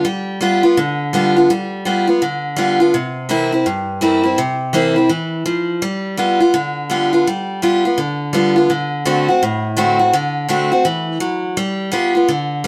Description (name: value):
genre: rock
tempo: 167 BPM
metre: 4/4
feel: swing 63% on 8ths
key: G mixolydian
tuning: A4 = 435 Hz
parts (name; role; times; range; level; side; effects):
- picked steel-string acoustic guitar; solo; 0.0-12.7 s; G2 to F#4; -17 LUFS; equal; none
room: light reverb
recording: band playing live in one room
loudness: -17 LUFS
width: mono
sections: 0.0-12.7 A section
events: none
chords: 0.0 G7; 2.9 C7; 5.8 G7; 8.7 D7; 11.6 G7